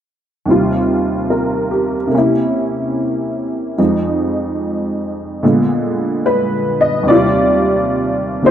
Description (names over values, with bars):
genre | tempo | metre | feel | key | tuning
solo jazz | 73 BPM | 4/4 | swing 68% on 8ths | Eb major | A4 = 437 Hz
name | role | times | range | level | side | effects
honky-tonk upright piano | solo | 0.5-8.5 s | Eb2 to Eb5 | -14 LUFS | equal | none
room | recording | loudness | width
moderate large studio reverb, RT60 1.3 s | none | -14 LUFS | side -10 dB against mid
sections
0.5-7.1 A section; 7.1-8.5 B section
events
none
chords
0.5 Eb69; 2.1 C7b9; 3.8 Fm7; 5.4 Bb7b9; 7.1 Eb69